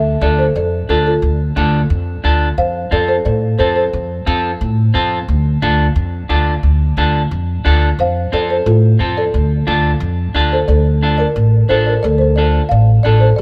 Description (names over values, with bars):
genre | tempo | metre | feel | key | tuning
latin, cumbia | 178 BPM | 4/4 | straight | D minor | A4 = 440 Hz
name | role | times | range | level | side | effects
folk marimba with soft mallets | melody | 0.0-5.1, 8.0-13.4 s | F4 to F5 | -20 LUFS | equal | none
upright bass | bass | 0.0-13.4 s | A1 to A2 | -17 LUFS | equal | none
clean electric guitar | accompaniment | 0.2-13.3 s | C4 to A4 | -22 LUFS | equal | none
room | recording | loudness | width
light reverb | heard from further back in the room | -15 LUFS | mono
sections
0.0-10.7 A section; 10.7-13.4 B section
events
none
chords
0.0 Dm; 2.6 F; 5.3 Dm; 8.0 F; 9.3 Dm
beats
0.21 0.55 0.89 | 1.23 1.57 1.91 2.24 | 2.58 2.92 3.26 3.60 | 3.94 4.27 4.61 4.95 | 5.29 5.63 5.96 6.30 | 6.64 6.98 7.31 7.65 | 7.99 8.33 8.66 9.00 | 9.34 9.68 10.02 10.35 | 10.69 11.03 11.36 11.70 | 12.04 12.38 12.71 13.05 | 13.39